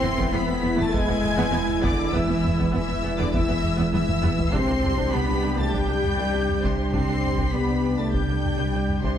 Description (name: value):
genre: cinematic, hybrid orchestral and electronic film score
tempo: 100 BPM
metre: 4/4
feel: straight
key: unclear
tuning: A4 = 444 Hz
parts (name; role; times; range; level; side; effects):
- clear symphonic violin section; melody; 0.0-9.2 s; C6 to C7; -32 LUFS; left 2 dB; none
- clear symphonic violin section; second line; 0.0-9.2 s; C5 to C6; -33 LUFS; left 2 dB; none
- clear symphonic viola section; accompaniment; 0.0-9.2 s; B3 to G4; -30 LUFS; right 1 dB; none
- clear trombone section; sustained chords; 0.0-9.2 s; E3 to E4; -31 LUFS; right 4 dB; none
- glassy FM pad; sustained chords; 0.0-9.2 s; C3 to G#4; -30 LUFS; left 1 dB; ensemble chorus, built-in reverb
- mellow French horn section; sustained chords; 0.0-9.2 s; C3 to C4; -29 LUFS; left 4 dB; none
- pure sine sub bass; bass; 0.0-9.2 s; E1 to C2; -31 LUFS; equal; none
- rich symphonic cello section; bass; 0.0-9.2 s; C3 to C4; -30 LUFS; right 2 dB; none
- rich symphonic double bass section; bass; 0.0-9.1 s; C2 to E2; -30 LUFS; right 3 dB; none
- taiko ensemble; drums; 0.0-9.2 s; none; -29 LUFS; equal; none
room: moderate concert hall reverb, RT60 2.1 s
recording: dark, warm production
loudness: -21 LUFS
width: side -9 dB against mid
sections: 0.0-9.2 A section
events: drum fill 3.9-4.5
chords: 0.0 E; 4.5 Csus2